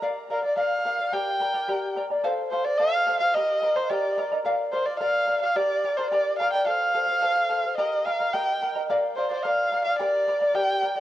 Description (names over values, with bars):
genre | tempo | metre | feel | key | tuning
andean folk | 108 BPM | 2/4 | straight | G minor | A4 = 440 Hz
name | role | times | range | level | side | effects
charango | accompaniment | 0.0-11.0 s | G4 to Bb5 | -27 LUFS | left 1 dB | cassette tape
dark erhu | melody | 0.3-11.0 s | Bb4 to G5 | -24 LUFS | equal | cassette tape
room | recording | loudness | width
moderate lush hall reverb, RT60 2.9 s | home recording on cassette | -22 LUFS | side -13 dB against mid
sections
0.0-2.2 A section; 2.2-11.0 A section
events
none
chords
0.0 Bb; 1.1 Gm; 2.2 F; 3.3 Eb; 4.5 Bb; 5.6 Gm; 6.7 F; 7.8 Eb; 8.9 Bb; 10.0 Gm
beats
| 0.03 0.58 | 1.13 1.68 | 2.24 2.79 | 3.34 3.90 | 4.45 5.00 | 5.56 6.11 | 6.67 7.22 | 7.77 8.33 | 8.88 9.44 | 9.99 10.54